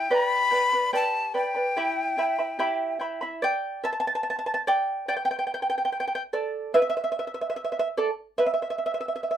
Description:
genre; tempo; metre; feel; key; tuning
andean folk, Andean ensemble; 72 BPM; 4/4; straight; unclear; A4 = 439 Hz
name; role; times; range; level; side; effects
breathy bright quena; melody; 0.0-3.0 s; G5 to B5; -25 LUFS; left 3 dB; none
charango; accompaniment; 0.0-9.4 s; E4 to B5; -25 LUFS; right 2 dB; none
room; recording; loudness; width
light reverb; none; -24 LUFS; side -10 dB against mid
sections
0.0-3.4 A section; 3.4-9.4 B section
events
charango solo 3.4-9.4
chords
0.1 G; 1.8 Em; 3.4 A7sus4; 6.7 N.C.

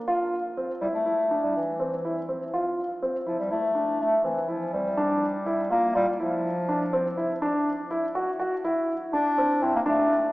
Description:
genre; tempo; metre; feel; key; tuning
progressive instrumental, progressive; 123 BPM; 5/4; straight; unclear; A4 = 440 Hz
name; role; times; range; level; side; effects
dark grand piano; arpeggios; 0.1-10.1 s; C4 to F#4; -26 LUFS; equal; none
mellow bass clarinet; melody; 0.8-10.3 s; E3 to D4; -25 LUFS; left 1 dB; none
room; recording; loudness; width
wet church reverb, RT60 2.8 s; recorded in a church or concert hall, small speaker sound; -24 LUFS; side -19 dB against mid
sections
0.0-5.0 A section; 5.0-10.3 B section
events
none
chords
0.1 Csus24; 7.4 D

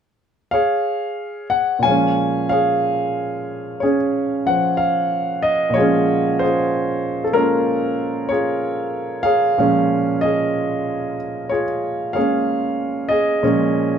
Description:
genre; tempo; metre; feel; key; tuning
solo jazz; 62 BPM; 4/4; swing 68% on 8ths, rubato; Bb minor; A4 = 440 Hz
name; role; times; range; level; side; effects
warm grand piano; solo; 0.5-14.0 s; Bb2 to Ab5; -17 LUFS; equal; none
room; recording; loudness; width
moderate club reverb, RT60 0.8 s; dark, warm production; -17 LUFS; side -8 dB against mid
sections
0.0-1.8 A section; 1.8-14.0 B section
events
none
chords
0.0 Dbadd11/Ab; 1.8 Bbm7

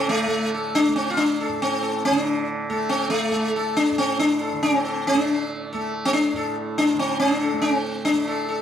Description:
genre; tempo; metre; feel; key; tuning
indian classical, Hindustani; 139 BPM; 7/4; straight; unclear; A4 = 436 Hz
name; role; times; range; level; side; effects
sitar; melody; 0.0-8.6 s; A3 to A4; -20 LUFS; left 1 dB; none
tanpura; drone; 0.0-8.6 s; A2 to A3; -30 LUFS; right 4 dB; none
room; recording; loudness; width
light reverb; close, detailed microphones; -20 LUFS; side -9 dB against mid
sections
0.0-8.6 A section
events
none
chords
none

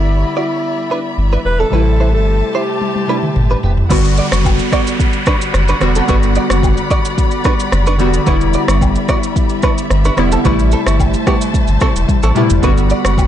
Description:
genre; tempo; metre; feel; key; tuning
afrobeats; 110 BPM; 4/4; straight; unclear; A4 = 441 Hz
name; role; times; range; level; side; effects
breathy alto saxophone; melody; 0.0-3.4 s; E4 to B4; -20 LUFS; equal; tape echo
warm analog keys; accompaniment; 0.0-13.3 s; C3 to F#4; -18 LUFS; equal; chorus
warm studio string section; sustained chords; 0.0-13.3 s; G3 to B5; -23 LUFS; left 3 dB; none
warm sub bass; bass; 0.0-13.3 s; E1 to A1; -14 LUFS; equal; none
direct-recorded clean electric guitar; riff; 0.4-13.0 s; B3 to D5; -22 LUFS; right 4 dB; ensemble chorus, tape echo
afro-pop drum kit; drums; 2.8-13.3 s; crash cymbal, kick drum, rim click, shaker, toms; -16 LUFS; equal; none
agogo bells and woodblock; percussion; 3.9-13.3 s; none; -26 LUFS; left 1 dB; none
downlifter; sound effects; 3.9-8.3 s; none; -25 LUFS; equal; none
room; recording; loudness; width
little or no reverb; dark, warm production, nothing above 10.3 kHz; -12 LUFS; side -11 dB against mid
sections
0.0-3.9 A section; 3.9-13.3 B section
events
drum fill 2.8-3.9, 12.1-12.6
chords
0.0 Em7; 1.7 Am7; 3.9 Em7; 10.5 Am7; 12.6 Em7 (rootless)

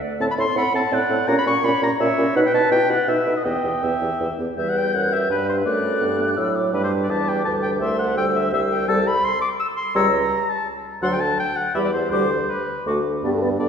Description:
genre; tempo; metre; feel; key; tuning
quick classical-period movement for wind quintet; 167 BPM; 3/4; straight; E minor; A4 = 440 Hz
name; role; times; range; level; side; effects
warm clarinet; accompaniment; 0.0-13.7 s; B3 to G5; -26 LUFS; right 2 dB; none
bright silver concert flute; melody; 0.2-13.7 s; F#4 to G6; -28 LUFS; left 4 dB; none
clear oboe; second line; 0.2-13.7 s; B4 to E6; -24 LUFS; left 2 dB; none
warm French horn; accompaniment; 0.2-13.7 s; F#3 to B4; -27 LUFS; left 1 dB; none
warm bassoon; bass; 0.2-13.7 s; C2 to B2; -24 LUFS; right 1 dB; none
room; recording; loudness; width
wet concert hall reverb, RT60 2.2 s; heard from further back in the room; -18 LUFS; side -7 dB against mid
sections
0.0-4.6 A section; 4.6-13.2 B section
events
none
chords
0.2 F#dim/A; 1.3 A#dim7; 2.4 B7; 2.7 Em; 3.1 B; 3.5 Em; 5.7 D/F#; 6.7 G; 7.8 C; 8.9 Am7/C; 10.0 C#5; 11.0 D7; 11.8 Em; 12.1 G/D; 12.9 D

